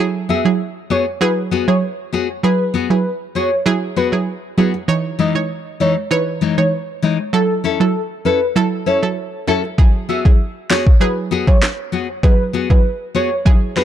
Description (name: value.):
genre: dancehall.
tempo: 98 BPM.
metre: 4/4.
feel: straight.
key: unclear.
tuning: A4 = 440 Hz.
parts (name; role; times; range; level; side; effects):
analog pluck; accompaniment; 0.0-13.8 s; E3 to C#5; -18 LUFS; right 4 dB; chorus, sidechain pumping.
warm velvety synth lead; melody; 0.3-13.8 s; A4 to E5; -21 LUFS; equal; chorus, tape echo.
nylon-string guitar; arpeggios; 0.3-13.8 s; E3 to A4; -19 LUFS; left 7 dB; tape echo.
afro-pop drum kit; drums; 9.8-13.8 s; handclaps, kick drum, rim click, snare drum; -12 LUFS; equal; none.
room: little or no reverb.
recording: dark, warm production.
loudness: -14 LUFS.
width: side -10 dB against mid.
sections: 0.0-13.8 A section.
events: none.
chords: 0.0 Eadd9; 4.9 C#madd9; 7.3 F#m7; 9.8 Eadd9.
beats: 0.60 1.21 1.82 | 2.44 3.05 3.66 4.27 | 4.89 5.50 6.11 6.72 | 7.33 7.95 8.56 9.17 | 9.78 10.40 11.01 11.62 | 12.23 12.85 13.46.